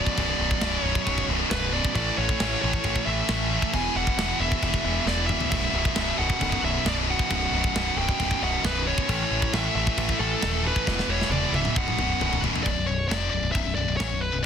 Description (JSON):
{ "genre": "heavy metal", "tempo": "134 BPM", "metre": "4/4", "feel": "straight", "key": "B minor", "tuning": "A4 = 441 Hz", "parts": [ { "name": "high-gain lead guitar", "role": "melody", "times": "0.0-14.5 s", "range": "A4 to G#5", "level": "-29 LUFS", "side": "equal", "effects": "distortion, ping-pong delay" }, { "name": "heavy high-gain guitar", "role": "riff", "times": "0.0-14.5 s", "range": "B1 to A3", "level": "-28 LUFS", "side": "left 15 dB", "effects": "distortion" }, { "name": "heavy high-gain guitar", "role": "riff", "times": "0.0-12.6 s", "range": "B1 to A3", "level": "-29 LUFS", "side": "right 14 dB", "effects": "distortion" }, { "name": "tight metal drum kit", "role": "drums", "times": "0.1-14.1 s", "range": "crash cymbal, kick drum, snare drum, toms", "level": "-29 LUFS", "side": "equal", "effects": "soft clipping on kick, soft clipping on snare" }, { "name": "growling picked electric bass", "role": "bass", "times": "0.2-14.4 s", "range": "B0 to A1", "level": "-29 LUFS", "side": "equal", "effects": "overdrive" } ], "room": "small room ambience", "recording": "dense, heavily limited modern master", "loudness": "-22 LUFS", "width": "side -8 dB against mid", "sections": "0.0-12.7 A section; 12.7-14.5 B section", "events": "drum fill 5.1-5.5, 10.9-12.7", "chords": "0.0 Bm; 2.0 A; 3.7 E5; 5.5 B5; 9.1 A; 10.9 E5; 11.8 B5; 12.7 Bm" }